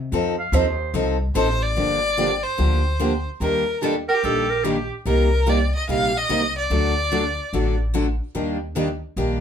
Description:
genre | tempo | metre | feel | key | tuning
acoustic string swing (jazz manouche) | 146 BPM | 4/4 | swing 64% on 8ths | G minor | A4 = 442 Hz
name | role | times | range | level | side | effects
upright bass | bass | 0.0-9.4 s | G1 to C3 | -24 LUFS | equal | none
picked steel-string acoustic guitar | accompaniment | 0.1-9.4 s | C3 to A4 | -25 LUFS | left 3 dB | none
picked steel-string acoustic guitar | accompaniment | 0.1-9.4 s | C3 to A4 | -26 LUFS | right 4 dB | none
bright clarinet | second line | 0.4-0.9, 4.1-5.0 s | G4 to F5 | -23 LUFS | right 4 dB | none
clear violin | melody | 1.4-7.8 s | G4 to F5 | -23 LUFS | left 1 dB | none
room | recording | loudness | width
moderate studio ambience, RT60 0.5 s | band playing live in one room | -19 LUFS | side -8 dB against mid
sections
0.0-1.8 A section; 1.8-9.4 B section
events
clarinet solo 0.0-1.8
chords
0.1 F7; 1.8 Gm7; 3.4 Ebmaj7; 5.1 Cm7; 6.7 D; 8.3 Ebmaj7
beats
| 0.12 0.53 0.94 1.35 | 1.76 2.17 2.58 3.00 | 3.41 3.82 4.23 4.64 | 5.05 5.47 5.88 6.29 | 6.70 7.11 7.53 7.94 | 8.35 8.76 9.17

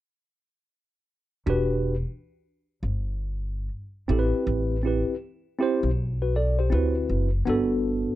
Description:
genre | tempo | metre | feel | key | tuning
hip hop | 80 BPM | 4/4 | swing 63% on 16ths | E minor | A4 = 440 Hz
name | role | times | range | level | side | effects
mellow tine electric piano | accompaniment | 1.5-8.2 s | B3 to D5 | -25 LUFS | right 1 dB | medium stereo tremolo, plate reverb
upright bass | bass | 1.5-8.0 s | E1 to D2 | -26 LUFS | equal | none
room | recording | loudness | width
moderate studio reverb, RT60 0.5 s | dark, warm production, nothing above 10.4 kHz | -23 LUFS | side -15 dB against mid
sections
1.5-8.2 A section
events
none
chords
1.5 Em7; 4.1 Am9; 6.7 D13; 7.5 Gmaj7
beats
| 1.47 2.22 2.97 3.72 | 4.47 5.22 5.97 6.72 | 7.47

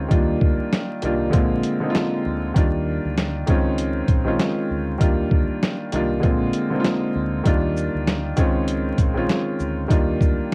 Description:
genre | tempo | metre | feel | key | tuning
hip hop, boom-bap hip-hop | 98 BPM | 4/4 | swing 59% on 16ths | Eb major | A4 = 439 Hz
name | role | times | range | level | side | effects
clear grand piano | accompaniment | 0.0-10.5 s | D3 to F4 | -24 LUFS | equal | cassette tape
deep dub fingered electric bass | bass | 0.0-10.4 s | Bb1 to Eb2 | -30 LUFS | equal | none
boom bap sampler-style drum kit | drums | 0.1-10.5 s | hi-hat, kick drum, shaker, snare drum | -23 LUFS | equal | cassette tape
room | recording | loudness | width
light reverb | home recording on cassette, vinyl crackle | -21 LUFS | mono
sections
0.0-10.5 A section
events
none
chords
0.1 Ebmaj7; 1.3 Bb7; 2.6 Ebmaj7; 3.5 Bbm11; 5.0 Ebmaj7; 6.2 Bb7; 7.5 Ebmaj7; 8.4 Bbm11; 9.9 Ebmaj7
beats
| 0.11 0.72 1.33 1.95 | 2.56 3.17 3.78 4.39 | 5.01 5.62 6.23 6.84 | 7.46 8.07 8.68 9.29 | 9.90 10.52

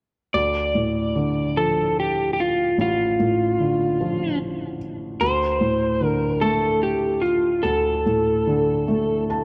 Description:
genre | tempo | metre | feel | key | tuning
pop | 49 BPM (dotted quarters) | 6/8 | straight | D minor | A4 = 440 Hz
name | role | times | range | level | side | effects
electric slide guitar | melody | 0.3-9.2 s | F4 to D5 | -24 LUFS | equal | analog delay
felt-muted upright piano | accompaniment | 0.3-9.4 s | A1 to A5 | -26 LUFS | equal | none
room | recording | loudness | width
wet plate reverb, RT60 3.0 s | dark, warm production | -22 LUFS | mono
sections
0.3-9.4 A section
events
felt piano fill 8.9-9.4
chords
0.3 Dm; 5.2 D7(no3)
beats
| 0.34 1.57 | 2.79 4.00 | 5.21 6.43 | 7.65 8.88

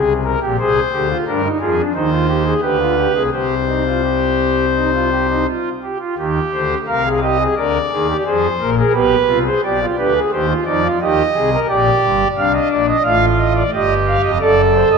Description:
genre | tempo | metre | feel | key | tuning
classical, baroque-style 3-part fugue for pipe organ | 88 BPM | 4/4 | straight | C minor | A4 = 438 Hz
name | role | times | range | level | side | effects
pipe organ, foundations | solo | 0.0-15.0 s | F1 to F5 | -14 LUFS | equal | none
room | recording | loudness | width
wet recital hall reverb, RT60 1.6 s | none | -14 LUFS | side -5 dB against mid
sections
0.0-6.2 A section; 6.2-15.0 B section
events
none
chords
0.0 N.C.; 0.6 Dm7b5/C; 1.9 Cm/Eb; 2.6 G/D; 3.3 Cm; 7.6 Ddim; 8.9 G7/B; 10.3 Cm/Eb; 11.7 Gm; 13.1 F13; 14.4 D7/F#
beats
| 0.59 1.27 1.95 2.63 | 3.33 4.04 4.75 5.46 | 6.17 6.87 7.57 8.26 | 8.95 9.64 10.32 11.01 | 11.69 12.37 13.05 13.73 | 14.40

